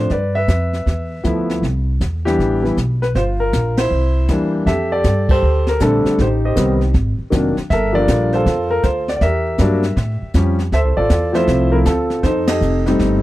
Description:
jazz piano trio; 158 BPM; 4/4; swing 65% on 8ths; C major, F major from 4.7 s; A4 = 440 Hz
warm concert grand piano; melody; 0.0-13.2 s; D3 to E5; -17 LUFS; equal
upright bass; bass; 0.0-13.2 s; F1 to A2; -18 LUFS; equal
jazz brush drum kit; drums; 0.1-13.2 s; brushed snare drum, crash cymbal, hi-hat, kick drum, ride cymbal, snare drum; -21 LUFS; equal
studio ambience; dry, close 1970s-style studio recording; -14 LUFS; side -16 dB against mid
0.0-4.7 A section; 4.7-13.2 B section
band accent 3.7, 5.2, 12.4
0.1 G13; 1.6 Cmaj9; 3.1 Gm7; 3.9 C7; 4.7 F69; 6.2 Am7b5; 6.9 Absus2; 7.7 Gm9; 9.2 Em7b5; 10.0 A7b13; 10.7 Dm9; 12.2 F9
| 0.10 0.48 0.86 1.24 | 1.62 2.00 2.38 2.77 | 3.15 3.52 3.90 4.29 | 4.66 5.04 5.42 5.80 | 6.18 6.56 6.94 7.32 | 7.70 8.08 8.46 8.83 | 9.21 9.59 9.97 10.35 | 10.73 11.11 11.48 11.86 | 12.24 12.62 13.00

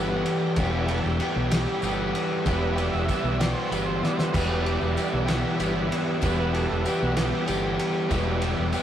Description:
psychedelic rock; 64 BPM (dotted quarters); 6/8; straight; E minor; A4 = 439 Hz
overdriven combo organ; sustained chords; 0.0-8.8 s; G3 to E5; -30 LUFS; right 3 dB
overdriven electric guitar; riff; 0.0-8.8 s; E2 to G4; -26 LUFS; equal
growling fingered electric bass; bass; 0.0-8.7 s; E1 to B1; -28 LUFS; equal; overdrive
cloth-damped thuddy drum kit; drums; 0.3-8.8 s; crash cymbal, kick drum, ride cymbal, snare drum; -30 LUFS; equal
tambourine; percussion; 0.6-8.8 s; -45 LUFS; left 6 dB
moderate studio reverb, RT60 0.6 s; rough rehearsal-room recording, warm saturation; -22 LUFS; side -10 dB against mid
0.0-8.8 A section
transistor combo organ solo 0.0-8.8; drum fill 4.0-4.3
0.0 Em
| 0.57 1.51 | 2.46 3.40 | 4.34 5.28 | 6.22 7.17 | 8.11

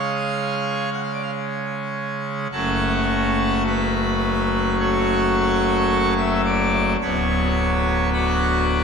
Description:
classical, chorale-style piece for pipe organ; 50-54 BPM; 4/4; rubato; F# minor; A4 = 440 Hz
pipe organ, full organ; solo; 0.0-8.8 s; D1 to F#5; -18 LUFS; equal
wet church reverb, RT60 3.2 s; minimal, uncompressed stereo recording; -18 LUFS; side -6 dB against mid
0.0-2.5 A section; 2.5-8.8 B section
0.0 C#; 2.5 F#m; 7.0 Bm/D
0.13 1.32 | 2.52 3.66 4.78 5.89 | 7.00 8.12

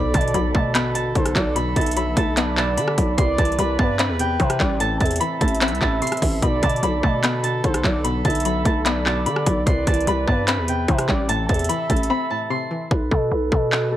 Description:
hip hop, trap; 148 BPM; 4/4; half-time; B phrygian; A4 = 440 Hz
Celtic harp; melody; 0.0-14.0 s; A4 to C6; -25 LUFS; equal; low-pass filter, analog delay
gliding portamento lead; second line; 0.0-12.9 s; C5 to E5; -28 LUFS; right 2 dB; chorus, tremolo, analog delay
string-like resonator pluck; accompaniment; 0.0-12.9 s; A2 to C4; -27 LUFS; left 2 dB; chorus, low-pass filter
warm brass ensemble; sustained chords; 0.0-12.9 s; C3 to B4; -33 LUFS; equal
growling 808-style bass; bass; 0.0-14.0 s; A1 to D3; -23 LUFS; equal
impact; sound effects; 0.0-1.6 s; -32 LUFS; equal
trap drum kit; drums; 0.1-13.8 s; handclaps, hi-hat, kick drum, rim click; -22 LUFS; equal; overdrive
digital ambience; dry, gritty hardware recording, transformer saturation; -18 LUFS; side -12 dB against mid
0.0-12.9 A section; 12.9-14.0 B section
impact 0.0-1.6; break 12.1-12.9; hi-hats muted 12.9-14.0; filter sweep 12.9-14.0
0.0 Bm7; 3.2 Cmaj7; 4.8 Am; 6.4 Bm7; 9.7 Cmaj7; 11.3 Am; 12.9 B7(no3)
0.34 0.75 1.15 | 1.56 1.97 2.37 2.78 | 3.18 3.59 3.99 4.40 | 4.80 5.21 5.61 6.02 | 6.42 6.83 7.24 7.64 | 8.05 8.45 8.86 9.26 | 9.67 10.07 10.48 10.88 | 11.29 11.70 12.10 12.51 | 12.91 13.32 13.72

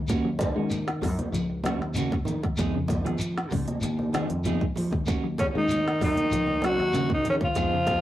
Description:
afrobeat; 96 BPM; 4/4; straight; Eb minor; A4 = 438 Hz
electric guitar at the edge of break-up; arpeggios; 0.0-8.0 s; Db3 to Ab3; -32 LUFS; left 4 dB
semi-hollow electric guitar; stabs; 0.1-7.9 s; Eb3 to Ab4; -32 LUFS; right 4 dB
fingered electric bass; bass; 0.1-8.0 s; Db2 to F3; -31 LUFS; equal
organic electronic drum kit; drums; 0.1-8.0 s; hi-hat, kick drum, snare drum; -30 LUFS; equal
shekere; percussion; 0.1-8.0 s; -36 LUFS; equal
congas; percussion; 0.4-8.0 s; -34 LUFS; right 1 dB
raspy tenor saxophone; melody; 5.4-8.0 s; Db4 to Gb4; -25 LUFS; left 1 dB; slapback echo
mellow trombone; second line; 5.4-8.0 s; Db3 to Gb3; -32 LUFS; right 2 dB
moderate small room ambience, RT60 0.5 s; rough rehearsal-room recording; -24 LUFS; side -13 dB against mid
0.0-8.0 A section
0.1 Ebm7; 2.6 Fm7b5; 5.1 Ebm7
| 0.09 0.71 1.34 1.96 | 2.58 3.21 3.83 4.45 | 5.07 5.70 6.32 6.94 | 7.57

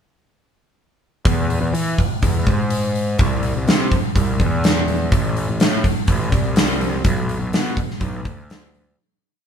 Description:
quiet-loud alternative rock; 124 BPM; 4/4; straight; E mixolydian; A4 = 441 Hz
fuzz picked electric bass; bass; 1.3-8.9 s; A1 to E3; -22 LUFS; equal; overdrive
huge arena drum kit; drums; 1.3-8.9 s; hi-hat, kick drum, snare drum; -18 LUFS; equal
light reverb; band playing live in one room; -17 LUFS; side -8 dB against mid
1.3-9.0 verse
fade-out 7.0-9.0
| 1.26 1.74 2.23 2.71 | 3.19 3.67 4.16 4.64 | 5.12 5.60 6.08 6.56 | 7.04 7.53 8.01 8.49

